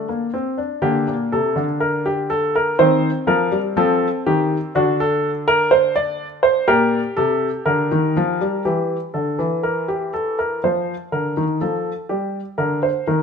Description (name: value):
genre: classical, baroque-style 3-part fugue for grand piano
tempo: 61 BPM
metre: 4/4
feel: straight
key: G minor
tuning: A4 = 441 Hz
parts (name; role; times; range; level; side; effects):
- warm baby grand piano; solo; 0.0-13.2 s; Bb2 to D5; -17 LUFS; equal; none
room: moderate stone room reverb, RT60 1.2 s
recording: minimal, uncompressed stereo recording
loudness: -17 LUFS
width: side -6 dB against mid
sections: 0.8-8.7 A section; 8.7-13.2 B section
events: none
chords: 0.0 N.C.; 0.8 Gm; 2.8 Cm/Eb; 4.7 D7(no3); 6.7 Gm/Bb; 8.7 A5; 10.6 Dm; 12.6 Bb/D